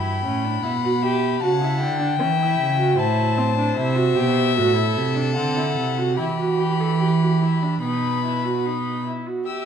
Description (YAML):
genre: classical, baroque-style fugue for string quartet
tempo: 76 BPM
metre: 4/4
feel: straight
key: unclear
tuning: A4 = 437 Hz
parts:
  - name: warm violin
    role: melody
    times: 0.0-9.7 s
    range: E5 to E6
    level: -25 LUFS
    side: left 10 dB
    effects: none
  - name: rich violin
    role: second line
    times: 0.0-9.7 s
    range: G4 to G5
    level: -29 LUFS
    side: left 4 dB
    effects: none
  - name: rich viola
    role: accompaniment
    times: 0.0-9.7 s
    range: C4 to A4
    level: -24 LUFS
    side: right 3 dB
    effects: none
  - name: warm cello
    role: bass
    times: 0.0-9.0 s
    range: G2 to E3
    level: -22 LUFS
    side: right 3 dB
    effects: none
room: wet recital hall reverb, RT60 1.4 s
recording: dark, warm production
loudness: -19 LUFS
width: side -8 dB against mid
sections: 0.0-9.5 A section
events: none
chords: 0.0 Em/G; 1.4 C#dim; 3.0 F#m7b5/A; 6.2 Em; 7.8 B